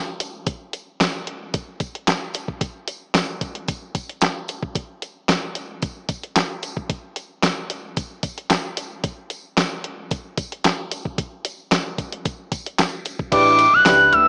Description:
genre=early-eighties boogie funk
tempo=112 BPM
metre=4/4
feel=straight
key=unclear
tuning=A4 = 441 Hz
part: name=clean 12-bit digital drum machine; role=drums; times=0.2-14.3 s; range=crash cymbal, handclaps, hi-hat, kick drum, snare drum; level=-24 LUFS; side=equal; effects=none
part: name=tambourine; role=percussion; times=0.2-14.0 s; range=none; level=-39 LUFS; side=equal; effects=none
part: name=expressive portamento lead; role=melody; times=13.3-14.3 s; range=D6 to F#6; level=-14 LUFS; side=equal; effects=chorus
part: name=FM electric piano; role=accompaniment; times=13.3-14.3 s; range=D4 to B4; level=-22 LUFS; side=equal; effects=chorus, phaser
part: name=upright bass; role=bass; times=13.3-14.3 s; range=A1 to D2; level=-32 LUFS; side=equal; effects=none
room=moderate plate reverb, RT60 2.4 s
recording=small speaker sound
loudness=-22 LUFS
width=mono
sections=0.0-13.3 A section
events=none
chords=0.0 N.C.; 13.3 A9sus4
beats=| 0.47 1.00 1.54 2.07 | 2.61 3.14 3.68 4.22 | 4.75 5.29 5.82 6.36 | 6.89 7.43 7.97 8.50 | 9.04 9.57 10.11 10.64 | 11.18 11.72 12.25 12.79 | 13.32 13.86

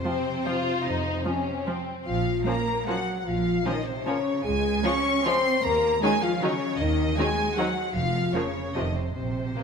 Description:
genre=classical, orchestral ballroom waltz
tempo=152 BPM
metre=3/4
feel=uneven beats, rubato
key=Bb minor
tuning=A4 = 440 Hz
part: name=warm studio violin section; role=melody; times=0.0-9.6 s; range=C5 to Db6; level=-29 LUFS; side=left 2 dB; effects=none
part: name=rich symphonic violin section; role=second line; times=0.0-9.6 s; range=Ab3 to F4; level=-32 LUFS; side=left 3 dB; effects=none
part: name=clear studio viola section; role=accompaniment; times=0.0-9.6 s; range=C3 to Gb3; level=-33 LUFS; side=right 2 dB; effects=none
part: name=dark French horn section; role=sustained chords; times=0.0-9.6 s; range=C4 to Db5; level=-29 LUFS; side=left 5 dB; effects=none
part: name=rich studio cello section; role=bass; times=0.0-9.6 s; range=C3 to Db4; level=-30 LUFS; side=right 4 dB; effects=none
part: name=timpani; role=percussion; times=0.0-0.2, 8.0-8.5 s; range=F2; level=-38 LUFS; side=left 1 dB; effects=none
part: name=warm studio double bass section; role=bass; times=0.9-9.5 s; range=F1 to F2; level=-32 LUFS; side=right 4 dB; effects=none
room=moderate scoring stage reverb, RT60 1.7 s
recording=none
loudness=-23 LUFS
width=side -6 dB against mid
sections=0.0-9.6 A section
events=none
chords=0.0 F5; 2.1 Bbm; 4.5 Db; 5.6 Ebm7; 6.8 Cdim/Eb (rootless); 8.0 Bbm/F (rootless); 8.8 F7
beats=0.04 0.46 | 0.85 1.25 1.67 | 2.07 2.46 2.88 | 3.26 3.65 4.06 | 4.45 4.84 5.25 | 5.64 6.02 6.42 | 6.80 7.18 7.58 | 7.96 8.35 8.76 | 9.15 9.56

